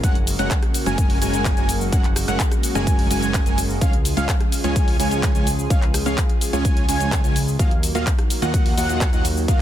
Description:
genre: EDM, festival progressive house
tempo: 127 BPM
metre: 4/4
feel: straight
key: unclear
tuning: A4 = 440 Hz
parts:
  - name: lush unison pad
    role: sustained chords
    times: 0.0-9.6 s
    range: Db3 to Ab4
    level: -29 LUFS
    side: right 1 dB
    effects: chorus, sidechain pumping
  - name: wide unison lead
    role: arpeggios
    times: 0.0-9.6 s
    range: F5 to Ab5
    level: -28 LUFS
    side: right 1 dB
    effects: analog chorus, sidechain pumping, tape echo
  - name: dense compressed supersaw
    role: riff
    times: 0.0-9.6 s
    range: Ab3 to Ab5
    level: -26 LUFS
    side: right 1 dB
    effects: vintage 12-bit sampler grit, sidechain pumping, tape echo
  - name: fat analog bass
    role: bass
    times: 0.0-9.6 s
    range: Gb1 to Eb2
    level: -25 LUFS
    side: equal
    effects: sidechain pumping
  - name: big-room dance drum kit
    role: drums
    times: 0.0-9.6 s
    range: cabasa, handclaps, hi-hat, rim click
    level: -27 LUFS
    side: left 1 dB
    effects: none
  - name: electronic kick drum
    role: drums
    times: 0.0-9.6 s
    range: none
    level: -19 LUFS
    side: equal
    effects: none
room: little or no reverb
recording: dense, heavily limited modern master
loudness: -17 LUFS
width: side -11 dB against mid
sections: 0.0-9.6 A section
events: none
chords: 0.0 Gbadd9; 3.8 Db; 7.6 Ebmadd9

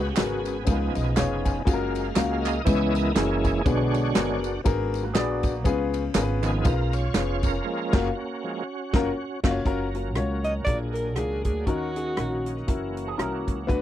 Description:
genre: uptempo gospel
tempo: 120 BPM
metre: 4/4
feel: swing 57% on 8ths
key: F# major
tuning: A4 = 441 Hz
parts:
  - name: warm baby grand piano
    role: accompaniment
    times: 0.0-13.8 s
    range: A#2 to G#5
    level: -28 LUFS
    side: left 4 dB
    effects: none
  - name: bright tonewheel organ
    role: sustained chords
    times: 0.0-13.8 s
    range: D3 to E#5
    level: -30 LUFS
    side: right 3 dB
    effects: slow rotary speaker, overdrive, chorus vibrato
  - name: upright bass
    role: bass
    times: 0.0-13.8 s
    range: E#1 to D#2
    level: -28 LUFS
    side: equal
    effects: none
  - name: warm soul drum kit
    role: drums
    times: 0.2-13.8 s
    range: crash cymbal, hi-hat, kick drum, ride cymbal, rim click, snare drum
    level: -26 LUFS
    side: right 1 dB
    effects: none
  - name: handclaps and tambourine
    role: percussion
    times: 0.2-7.5 s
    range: none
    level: -36 LUFS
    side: right 5 dB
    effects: none
  - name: electric guitar with an envelope filter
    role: second line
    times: 5.0-5.6, 13.1-13.7 s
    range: A#3 to A#4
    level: -34 LUFS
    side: right 6 dB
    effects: spring reverb
  - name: breathy alto saxophone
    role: melody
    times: 10.4-12.7 s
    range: F#4 to D#5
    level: -29 LUFS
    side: right 1 dB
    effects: none
room: little or no reverb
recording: none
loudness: -23 LUFS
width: side -12 dB against mid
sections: 0.0-9.7 A section; 9.7-13.8 B section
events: tonewheel organ solo 0.0-9.7; grand piano fill 0.7-1.7; band accent 7.7-9.7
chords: 0.0 C#7sus4; 0.7 C#7; 1.7 F#maj7; 2.7 C#m7; 3.2 F#9; 3.7 Bm6; 5.7 C#7; 7.7 F#maj7; 10.7 A#7; 11.7 D#m7; 12.7 F#7

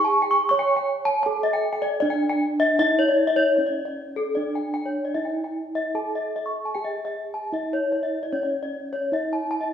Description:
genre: gamelan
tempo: 76 BPM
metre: 4/4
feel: straight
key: C# pelog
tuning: A4 = 440 Hz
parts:
  - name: gamelan-type bronze metallophone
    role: melody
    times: 0.0-9.7 s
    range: C#4 to C#5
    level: -27 LUFS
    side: right 3 dB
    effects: none
  - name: gamelan-type bronze metallophone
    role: arpeggios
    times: 0.0-9.7 s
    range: A4-40c to C#6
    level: -23 LUFS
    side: left 2 dB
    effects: none
room: wet large studio reverb, RT60 1.4 s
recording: band playing live in one room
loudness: -21 LUFS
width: side -8 dB against mid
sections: 0.0-3.6 A section; 3.6-9.7 B section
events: none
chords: none

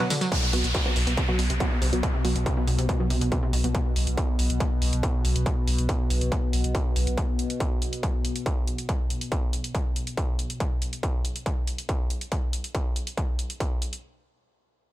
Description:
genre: driving peak-time techno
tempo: 140 BPM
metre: 4/4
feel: straight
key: unclear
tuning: A4 = 439 Hz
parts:
  - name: analog pluck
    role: riff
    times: 0.0-3.7 s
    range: B2 to F#3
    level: -31 LUFS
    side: equal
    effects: chorus, tube saturation, sidechain pumping, digital delay
  - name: filtered dub chord stab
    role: stabs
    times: 0.0-3.7 s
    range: F#3 to F#4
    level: -32 LUFS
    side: right 2 dB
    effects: chorus, sidechain pumping, dub echo
  - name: techno drum kit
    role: drums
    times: 0.0-14.0 s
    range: crash cymbal, hi-hat, ride cymbal, tambourine, toms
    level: -33 LUFS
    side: right 1 dB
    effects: sidechain pumping on hats, sidechain pumping on cymbals, sidechain pumping on perc, sidechain pumping on toms
  - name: analog drone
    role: drone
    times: 1.5-10.6 s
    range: B2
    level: -32 LUFS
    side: left 1 dB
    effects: chorus, sidechain pumping
  - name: electronic kick drum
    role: drums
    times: 0.3-13.7 s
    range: none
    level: -26 LUFS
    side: equal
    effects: distortion
  - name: downlifter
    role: sound effects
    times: 0.3-3.7 s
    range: none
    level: -32 LUFS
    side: equal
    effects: none
  - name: saturated sub bass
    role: bass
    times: 0.5-7.2 s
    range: B1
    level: -26 LUFS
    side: equal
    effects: sidechain pumping, low-pass filter
room: little or no reverb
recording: none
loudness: -24 LUFS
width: side -15 dB against mid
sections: 0.3-14.0 A section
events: break 0.0-0.3; filter sweep on synth stab 0.3-3.7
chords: 0.3 B5

